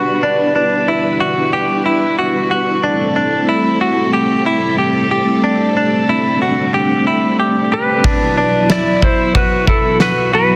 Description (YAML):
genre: dream pop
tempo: 92 BPM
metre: 4/4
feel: straight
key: E minor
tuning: A4 = 440 Hz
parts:
  - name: string machine, full ensemble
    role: sustained chords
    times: 0.0-10.6 s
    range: B2 to F#5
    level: -19 LUFS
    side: equal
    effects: ensemble chorus
  - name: direct-recorded clean electric guitar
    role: arpeggios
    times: 0.0-10.6 s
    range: D4 to G4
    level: -18 LUFS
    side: equal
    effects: lush chorus, delay
  - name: clean lap steel guitar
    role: melody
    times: 7.7-10.6 s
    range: A4 to D5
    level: -19 LUFS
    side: equal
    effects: delay
  - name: loose indie drum kit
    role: drums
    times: 8.0-10.2 s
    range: kick drum, ride cymbal, snare drum, tambourine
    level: -18 LUFS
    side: equal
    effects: none
room: moderate plate reverb, RT60 1.9 s, small room ambience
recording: dense, heavily limited modern master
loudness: -15 LUFS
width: mono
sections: 0.0-8.0 A section; 8.0-10.6 B section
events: none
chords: 0.0 Gmaj7; 2.8 Am7; 8.0 Esus2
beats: | 0.22 0.87 1.52 2.18 | 2.83 3.48 4.13 4.79 | 5.44 6.09 6.74 7.39 | 8.04 8.70 9.35 10.00